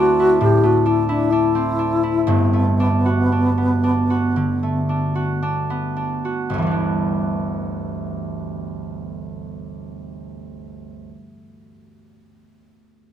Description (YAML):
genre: classical, impressionist duo for alto flute and harp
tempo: 54-71 BPM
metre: 4/4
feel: rubato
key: G major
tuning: A4 = 440 Hz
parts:
  - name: mellow wooden-headed alto flute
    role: melody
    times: 0.0-5.4 s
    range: B3 to G4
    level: -19 LUFS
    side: equal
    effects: none
  - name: concert harp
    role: accompaniment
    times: 0.0-11.3 s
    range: G1 to F#4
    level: -20 LUFS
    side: equal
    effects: none
room: light reverb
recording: none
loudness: -17 LUFS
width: side -10 dB against mid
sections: 0.0-6.5 A section; 6.5-10.5 B section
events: slowing down 0.0-6.5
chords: 0.0 D7sus2; 2.3 Gmaj9; 6.5 G6